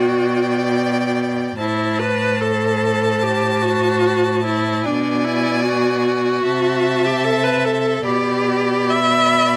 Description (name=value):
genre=classical, slow romantic movement for string quartet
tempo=74 BPM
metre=4/4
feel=rubato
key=unclear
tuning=A4 = 440 Hz
part: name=rich violin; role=melody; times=0.0-9.6 s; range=G5 to B5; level=-27 LUFS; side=equal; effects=none
part: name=warm violin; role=second line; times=0.0-9.6 s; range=C5 to E5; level=-28 LUFS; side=equal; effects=none
part: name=rich viola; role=accompaniment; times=0.0-9.6 s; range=D4 to E5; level=-21 LUFS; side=equal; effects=none
part: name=rich cello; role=bass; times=0.0-9.6 s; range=A2 to C3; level=-24 LUFS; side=equal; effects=none
room=light reverb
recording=none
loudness=-18 LUFS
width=mono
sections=0.0-9.6 A section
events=none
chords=0.0 G/B; 1.6 Am; 4.9 G#dim/B; 6.5 Am/C; 8.1 G/B